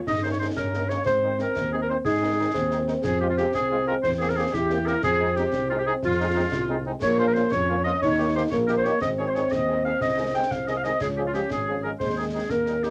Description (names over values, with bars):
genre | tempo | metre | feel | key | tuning
military-style march for wind band | 121 BPM (dotted quarters) | 6/8 | straight | Ab major | A4 = 443 Hz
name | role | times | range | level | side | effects
mellow euphonium | second line | 0.0-12.9 s | Ab3 to E4 | -29 LUFS | equal | none
warm woodwind section | second line | 0.1-12.9 s | F4 to G5 | -28 LUFS | equal | none
mellow tuba | bass | 0.1-12.9 s | Ab1 to Ab2 | -33 LUFS | equal | none
concert snare drum, concert bass drum and clash cymbals | drums | 0.1-12.9 s | none | -37 LUFS | equal | none
warm cornet | melody | 0.2-12.9 s | Eb4 to Ab4 | -38 LUFS | equal | none
mellow French horn section | accompaniment | 0.2-12.9 s | Eb3 to Eb4 | -35 LUFS | equal | none
room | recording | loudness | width
light reverb | none | -24 LUFS | mono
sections
0.0-12.9 A section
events
none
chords
0.1 Eb7/G; 1.1 Ab; 3.0 Fm; 4.0 C7/E; 5.0 Fm7; 7.0 Bbm; 8.0 Eb7; 9.0 Ab; 10.0 Ab/C; 11.0 Db; 12.0 Ab/Eb